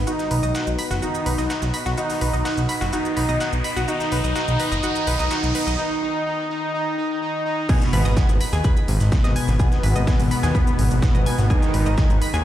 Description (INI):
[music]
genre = melodic techno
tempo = 126 BPM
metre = 4/4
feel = straight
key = G# minor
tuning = A4 = 440 Hz
[part]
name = sweeping resonant pad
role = sustained chords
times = 0.0-12.4 s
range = G#3 to B4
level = -33 LUFS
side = left 2 dB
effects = chorus, sidechain pumping
[part]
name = fat analog bass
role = bass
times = 0.0-12.4 s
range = F#1 to D#2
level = -21 LUFS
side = equal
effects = sidechain pumping
[part]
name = fat analog lead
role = melody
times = 0.1-12.1 s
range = B3 to D#4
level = -25 LUFS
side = equal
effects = wide subtle chorus, sidechain pumping, ping-pong delay
[part]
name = analog pluck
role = arpeggios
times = 0.1-12.4 s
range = F#4 to G#6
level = -30 LUFS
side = equal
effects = chorus, sidechain pumping, digital delay
[part]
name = breakbeat sampler-style drum kit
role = drums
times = 0.1-12.4 s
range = hi-hat, shaker, snare drum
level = -35 LUFS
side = equal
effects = overdrive, high-pass filter on perc, high-pass filter on snare, high-pass filter on hats, high-pass filter on room
[part]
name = deep house drum kit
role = drums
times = 0.1-12.4 s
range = crash cymbal, hi-hat, shaker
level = -34 LUFS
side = right 2 dB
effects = none
[part]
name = riser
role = sound effects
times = 1.7-5.8 s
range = none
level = -32 LUFS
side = equal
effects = none
[part]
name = big bright polysynth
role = second line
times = 7.7-12.1 s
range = B2 to D#3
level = -27 LUFS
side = left 1 dB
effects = chorus, sidechain pumping, digital delay
[part]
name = electronic kick drum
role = drums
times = 7.7-12.1 s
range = none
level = -19 LUFS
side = equal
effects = none
[sound]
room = light reverb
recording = played on a big sound system in a bare room, stone room reverb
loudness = -18 LUFS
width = side -12 dB against mid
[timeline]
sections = 0.0-7.7 A section; 7.7-12.4 B section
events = build-up 0.0-7.7; filter sweep on analog synth pad 0.0-7.7; riser 1.7-5.8; break 5.8-7.7; drop 7.7-12.4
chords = 0.1 B; 7.7 G#m